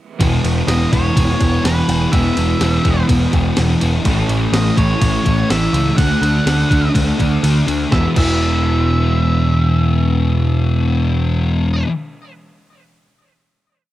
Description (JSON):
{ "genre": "rock, shoegaze and dream pop", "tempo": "124 BPM", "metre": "4/4", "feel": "straight", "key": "E major", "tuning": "A4 = 440 Hz", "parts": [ { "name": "overdriven semi-hollow guitar", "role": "riff", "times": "0.2-11.9 s", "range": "A2 to F#4", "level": "-21 LUFS", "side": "right 7 dB", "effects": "reverse reverb, cassette tape" }, { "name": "thick fuzz guitar", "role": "riff", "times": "0.2-11.9 s", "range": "E2 to D4", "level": "-18 LUFS", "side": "left 4 dB", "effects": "distortion, analog chorus, cassette tape" }, { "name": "growling picked electric bass", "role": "bass", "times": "0.2-11.8 s", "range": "E1 to D2", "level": "-18 LUFS", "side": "equal", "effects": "overdrive" }, { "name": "crisp 8-bit digital drum machine", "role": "drums", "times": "0.2-8.3 s", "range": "crash cymbal, kick drum, ride cymbal, snare drum", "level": "-19 LUFS", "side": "equal", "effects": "none" }, { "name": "octave-fuzz lead guitar", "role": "melody", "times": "0.7-11.8 s", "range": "B4 to F#5", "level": "-24 LUFS", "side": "right 1 dB", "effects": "distortion, cassette tape, analog delay" } ], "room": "little or no reverb", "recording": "home recording on cassette", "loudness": "-13 LUFS", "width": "side -14 dB against mid", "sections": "0.2-7.9 verse; 7.9-11.8 final chord", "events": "kick and snare drop out 7.4-7.9", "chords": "0.2 E; 4.0 A; 6.0 D; 7.9 E" }